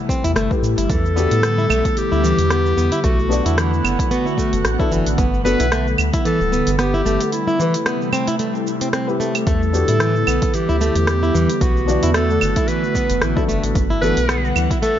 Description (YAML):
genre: organic downtempo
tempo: 112 BPM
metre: 4/4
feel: swing 56% on 16ths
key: A dorian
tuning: A4 = 440 Hz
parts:
  - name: felt-muted upright piano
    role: accompaniment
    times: 0.0-14.2 s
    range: B3 to D5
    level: -26 LUFS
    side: left 5 dB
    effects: sidechain pumping, digital delay
  - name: airy breathy pad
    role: sustained chords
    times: 0.0-15.0 s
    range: C3 to F#5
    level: -24 LUFS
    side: equal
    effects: chorus, phaser, sidechain pumping
  - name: flamenco guitar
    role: arpeggios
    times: 0.1-15.0 s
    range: E3 to E4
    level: -22 LUFS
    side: equal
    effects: digital delay
  - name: electronic kick drum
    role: drums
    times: 0.1-6.2, 9.5-14.8 s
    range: none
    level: -21 LUFS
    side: equal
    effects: overdrive
  - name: organic electronic drum kit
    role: drums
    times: 0.1-14.9 s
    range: claves, hi-hat, rim click, shaker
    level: -24 LUFS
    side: right 1 dB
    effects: none
  - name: round analog bass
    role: bass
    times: 0.2-14.7 s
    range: D1 to A2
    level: -20 LUFS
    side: equal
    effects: sidechain pumping
  - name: clear clarinet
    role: melody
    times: 0.9-15.0 s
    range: E4 to B4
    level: -22 LUFS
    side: equal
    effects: tape echo
room: light reverb, studio ambience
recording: nothing above 7.4 kHz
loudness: -15 LUFS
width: side -10 dB against mid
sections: 0.0-15.0 A section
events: break 7.3-9.5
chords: 0.0 Am7; 0.9 Em7; 3.0 Bm7; 5.2 Gmaj7; 7.3 Am7; 9.5 Em7; 11.6 Bm7; 13.8 Gmaj7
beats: 0.36 | 0.90 1.43 1.97 2.50 | 3.04 3.57 4.11 4.65 | 5.18 5.72 6.25 6.79 | 7.32 7.86 8.40 8.93 | 9.47 10.00 10.54 11.07 | 11.61 12.15 12.68 13.22 | 13.75 14.29 14.82